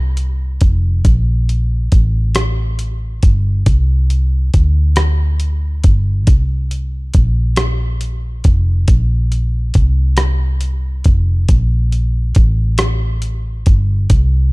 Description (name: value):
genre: slow six-eight R&B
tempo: 46 BPM (dotted quarters)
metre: 6/8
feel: straight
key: unclear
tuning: A4 = 439 Hz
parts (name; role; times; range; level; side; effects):
- vintage muted fingered electric bass; bass; 0.0-14.5 s; F1 to D2; -14 LUFS; equal; none
- dusty soul sampler-style drum kit; drums; 0.2-14.3 s; hi-hat, kick drum, rim click; -13 LUFS; equal; none
room: little or no reverb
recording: dark, warm production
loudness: -12 LUFS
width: side -25 dB against mid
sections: 0.0-14.5 A section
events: none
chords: none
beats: | 1.05 2.36 | 3.66 4.97 | 6.27 7.57 | 8.88 10.18 | 11.49 12.79 | 14.10